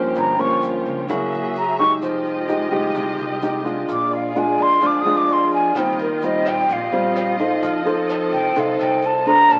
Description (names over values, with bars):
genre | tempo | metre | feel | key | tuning
bossa nova | 128 BPM | 4/4 | straight | unclear | A4 = 440 Hz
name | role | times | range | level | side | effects
nylon-string guitar | accompaniment | 0.0-9.6 s | G2 to C5 | -23 LUFS | equal | none
warm studio string section | sustained chords | 0.0-9.6 s | Ab3 to E5 | -31 LUFS | equal | none
upright bass | bass | 0.0-9.6 s | F1 to G2 | -39 LUFS | equal | none
breathy concert flute | melody | 0.2-9.6 s | Bb4 to Eb6 | -21 LUFS | equal | none
egg shaker | percussion | 0.2-9.6 s | none | -56 LUFS | equal | none
jazz brush drum kit | drums | 5.7-9.6 s | hi-hat, kick drum, rim click | -37 LUFS | equal | none
room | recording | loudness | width
wet small room reverb, RT60 0.5 s | very old 78 rpm record, vinyl crackle | -20 LUFS | mono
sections
0.0-9.6 A section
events
flute solo 0.0-9.6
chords
0.2 Gm7b5; 1.1 F#9; 2.0 Fm9; 3.9 Bb7; 5.8 Eb69; 7.6 F7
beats
| 0.15 0.62 1.09 1.55 | 2.02 2.49 2.95 3.42 | 3.89 4.35 4.82 5.29 | 5.75 6.22 6.69 7.16 | 7.62 8.09 8.56 9.02 | 9.49